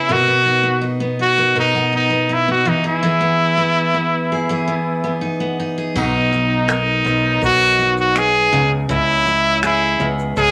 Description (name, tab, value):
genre	acoustic pop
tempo	82 BPM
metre	4/4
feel	straight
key	B major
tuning	A4 = 441 Hz
part	brilliant trumpet	melody	0.0-10.5 s	D#4 to G#4	-18 LUFS	equal	none
part	picked steel-string acoustic guitar	accompaniment	0.0-10.5 s	B2 to A#4	-22 LUFS	equal	none
part	modern bright fingered electric bass	bass	6.0-10.5 s	B1 to C#2	-26 LUFS	equal	none
part	jazz brush drum kit	drums	6.0-10.5 s	crash cymbal, finger snaps, kick drum, shaker	-28 LUFS	equal	none
room	wet club reverb, RT60 0.8 s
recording	none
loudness	-17 LUFS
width	mono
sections	0.0-6.0 A section; 6.0-10.5 B section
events	none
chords	0.1 Bmaj7; 2.7 Emaj7; 6.0 Bmaj7; 8.5 C#m7